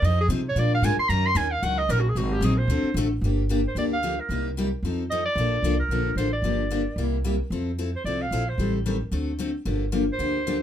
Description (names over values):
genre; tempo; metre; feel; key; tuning
acoustic string swing (jazz manouche); 224 BPM; 4/4; swing 58% on 8ths; G minor from 3.2 s; A4 = 442 Hz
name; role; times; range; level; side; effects
clear clarinet; melody; 0.0-10.6 s; Gb4 to C6; -26 LUFS; right 2 dB; none
picked steel-string acoustic guitar; accompaniment; 0.0-10.6 s; C3 to Bb4; -27 LUFS; left 3 dB; none
upright bass; bass; 0.0-10.6 s; G1 to C3; -26 LUFS; right 1 dB; none
room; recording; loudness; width
light reverb; close, detailed microphones; -22 LUFS; side -10 dB against mid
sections
0.0-3.2 A section; 3.2-10.6 B section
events
clarinet solo 0.0-3.2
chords
0.0 Fm7; 0.6 Bb7; 1.1 Ebm7; 2.2 Ab9; 2.7 D7; 3.2 Gm7; 4.3 Cm7; 4.8 F7; 5.4 Bbmaj7; 6.4 Gm7; 7.0 C7; 7.5 Fmaj7; 8.6 Am7b5; 9.1 D7; 9.7 Gm7